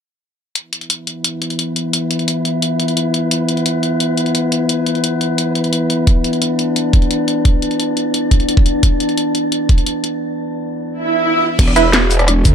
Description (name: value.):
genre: dark technical drum and bass.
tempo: 174 BPM.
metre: 4/4.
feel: straight.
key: unclear.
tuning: A4 = 439 Hz.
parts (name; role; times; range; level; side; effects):
metallic inharmonic drone; sustained chords; 0.6-11.5 s; E3 to E4; -17 LUFS; left 1 dB; chorus, built-in reverb, sidechain pumping.
drum and bass drum kit; drums; 0.6-12.5 s; crash cymbal, hi-hat, rim click, shaker, snare drum; -19 LUFS; left 2 dB; none.
electronic kick drum; drums; 6.1-12.5 s; none; -12 LUFS; equal; none.
swell; sound effects; 11.0-11.6 s; none; -15 LUFS; right 2 dB; none.
growl bass; bass; 11.6-12.5 s; E1 to D2; -14 LUFS; equal; chorus, overdrive.
filtered dub chord stab; stabs; 11.8 s; E4 to E5; -16 LUFS; right 6 dB; phaser, lush chorus, dub echo.
room: light reverb, digital ambience.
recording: none.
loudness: -14 LUFS.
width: side -8 dB against mid.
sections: 0.6-11.6 A section.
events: filter sweep on synth drone 0.6-11.6; break 10.2-11.6; swell 11.0-11.6.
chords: 0.6 E5.